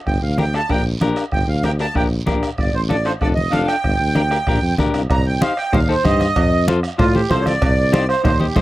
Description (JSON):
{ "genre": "latin, cumbia", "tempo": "191 BPM", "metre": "4/4", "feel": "straight", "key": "G minor", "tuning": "A4 = 442 Hz", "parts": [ { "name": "accordion", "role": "melody", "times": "0.1-8.6 s", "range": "F4 to Bb5", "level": "-20 LUFS", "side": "right 2 dB", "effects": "light tremolo tuning" }, { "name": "mellow tuba", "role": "bass", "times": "0.1-8.6 s", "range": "F1 to A2", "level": "-20 LUFS", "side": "equal", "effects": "none" }, { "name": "bombo", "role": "percussion", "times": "0.1-8.6 s", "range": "none", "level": "-22 LUFS", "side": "equal", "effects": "none" }, { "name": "guiro", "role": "percussion", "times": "0.1-8.6 s", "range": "none", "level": "-37 LUFS", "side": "right 4 dB", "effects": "none" }, { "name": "clean electric guitar", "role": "accompaniment", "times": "0.4-8.6 s", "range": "D4 to C5", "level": "-22 LUFS", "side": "left 4 dB", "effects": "none" }, { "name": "congas", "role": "percussion", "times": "0.4-8.6 s", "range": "none", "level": "-21 LUFS", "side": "right 1 dB", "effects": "none" }, { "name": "cowbell and timbales", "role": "percussion", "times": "5.1-8.6 s", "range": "none", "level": "-28 LUFS", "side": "right 3 dB", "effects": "none" } ], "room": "little or no reverb", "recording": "dry, close 1970s-style studio recording", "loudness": "-15 LUFS", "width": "side -16 dB against mid", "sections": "0.0-5.1 A section; 5.1-8.6 B section", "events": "accordion solo 5.1-8.6", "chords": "0.1 Gm; 2.6 Dm/G; 3.8 Gm; 5.1 Cm; 6.4 F; 7.6 Cm" }